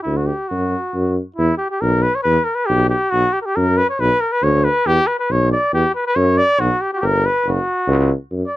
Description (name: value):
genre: balkan folk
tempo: 139 BPM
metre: 2/4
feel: swing 55% on 16ths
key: unclear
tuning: A4 = 436 Hz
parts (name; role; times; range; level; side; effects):
- warm cornet; melody; 0.0-8.6 s; E4 to D5; -17 LUFS; equal; none
- warm tuba; bass; 0.1-8.4 s; F#1 to F#2; -18 LUFS; equal; none
room: little or no reverb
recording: dry, close 1970s-style studio recording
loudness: -15 LUFS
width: side -15 dB against mid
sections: 0.0-1.4 A section; 1.4-8.3 B section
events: none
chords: 0.0 G5; 0.5 N.C.; 1.4 E5; 3.1 Bm; 4.9 E5; 6.6 Gmaj7; 7.4 F#5